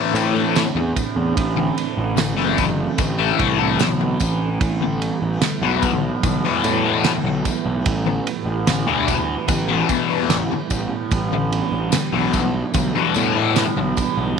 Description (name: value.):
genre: psychedelic rock.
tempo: 74 BPM.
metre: 4/4.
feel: straight.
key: unclear.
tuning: A4 = 442 Hz.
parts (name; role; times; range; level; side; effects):
string machine, cellos; sustained chords; 0.0-14.4 s; E3 to E4; -26 LUFS; right 12 dB; ensemble chorus.
thick fuzz guitar; riff; 0.0-13.8 s; E2 to A3; -21 LUFS; left 11 dB; distortion, phaser.
tanpura; drone; 0.0-14.4 s; A2 to A3; -29 LUFS; right 4 dB; stereo widening.
fuzz picked electric bass; bass; 0.1-14.3 s; F#1 to A2; -23 LUFS; equal; overdrive.
tambourine; percussion; 0.1-14.2 s; none; -34 LUFS; left 18 dB; none.
damped 70s drum kit; drums; 0.2-14.2 s; kick drum, ride cymbal, snare drum; -25 LUFS; right 4 dB; none.
room: light reverb, small room ambience.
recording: 1960s-style stereo with parts hard left and right.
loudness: -17 LUFS.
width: side -6 dB against mid.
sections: 0.0-14.4 A section.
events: none.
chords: 0.0 Am; 4.6 Em/A.